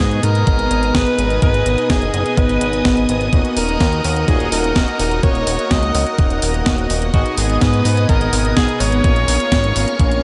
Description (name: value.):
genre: italo disco.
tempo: 126 BPM.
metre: 4/4.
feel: straight.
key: Eb minor.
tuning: A4 = 441 Hz.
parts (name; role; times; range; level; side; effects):
breathy alto saxophone; melody; 0.0-10.2 s; Gb4 to Eb5; -24 LUFS; equal; analog delay, shimmer reverb.
string machine, full ensemble; sustained chords; 0.0-10.2 s; Cb4 to Eb6; -24 LUFS; equal; ensemble chorus, shimmer reverb.
analog synth brass; stabs; 0.0-10.2 s; Bb3 to Eb5; -27 LUFS; equal; chorus, tape echo, shimmer reverb.
chorused synth bass; bass; 0.0-10.2 s; Eb1 to Ab2; -22 LUFS; equal; none.
clean 12-bit digital drum machine; drums; 0.0-10.2 s; hi-hat, snare drum; -25 LUFS; equal; overdrive, small room ambience.
electronic kick drum; drums; 0.5-10.1 s; none; -18 LUFS; equal; overdrive, small room ambience.
room: wet huge ambient reverb, RT60 8.0 s.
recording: dreamy mix soaked in reverb, nothing above 11.0 kHz.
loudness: -16 LUFS.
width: mono.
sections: 0.0-10.2 A section.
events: none.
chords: 0.0 Abm; 3.3 Ebm; 7.1 Abm; 9.0 Bbm.